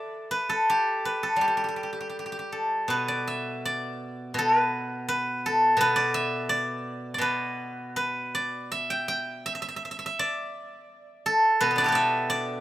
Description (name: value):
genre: chinese traditional, Chinese solo plucked strings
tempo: 77-87 BPM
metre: 2/4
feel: rubato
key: unclear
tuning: A4 = 440 Hz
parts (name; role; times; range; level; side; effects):
- steel-string zither; solo; 0.0-12.6 s; B2 to G5; -24 LUFS; equal; none
room: studio reverb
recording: rough home demo mix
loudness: -24 LUFS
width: side -14 dB against mid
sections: 0.0-2.9 A section; 2.9-12.6 B section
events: none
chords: none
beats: 0.65 | 1.38 2.14 | 2.89 3.62 | 4.35 5.07 | 5.78 6.49 | 7.21 7.95 | 8.72 9.47 | 10.21 10.93 | 11.63 12.32